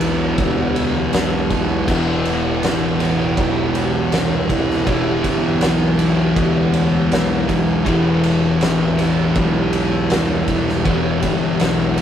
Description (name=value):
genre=stoner and doom metal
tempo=80 BPM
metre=4/4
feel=straight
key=E minor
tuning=A4 = 440 Hz
part: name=bowed-like drone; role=sustained chords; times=0.0-12.0 s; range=E3 to B3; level=-29 LUFS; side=equal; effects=none
part: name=crunchy overdriven guitar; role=riff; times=0.0-12.0 s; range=E3 to G4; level=-26 LUFS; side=equal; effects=none
part: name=thick fuzz guitar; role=riff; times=0.0-12.0 s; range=E2 to E3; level=-20 LUFS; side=left 4 dB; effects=distortion
part: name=thick fuzz guitar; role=riff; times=0.0-12.0 s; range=E2 to E3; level=-22 LUFS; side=right 4 dB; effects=distortion
part: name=fuzz picked electric bass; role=bass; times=0.0-12.0 s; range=E1 to D2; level=-25 LUFS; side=equal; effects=overdrive
part: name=oversized low-tuned drum kit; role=drums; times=0.0-12.0 s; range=crash cymbal, kick drum, ride cymbal, snare drum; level=-21 LUFS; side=right 1 dB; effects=none
room=moderate studio reverb, RT60 0.6 s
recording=rough rehearsal-room recording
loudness=-15 LUFS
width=side -9 dB against mid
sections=0.0-12.0 A section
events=none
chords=0.0 Em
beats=0.38 1.13 | 1.88 2.63 3.38 4.12 | 4.87 5.62 6.37 7.12 | 7.87 8.61 9.36 10.11 | 10.86 11.61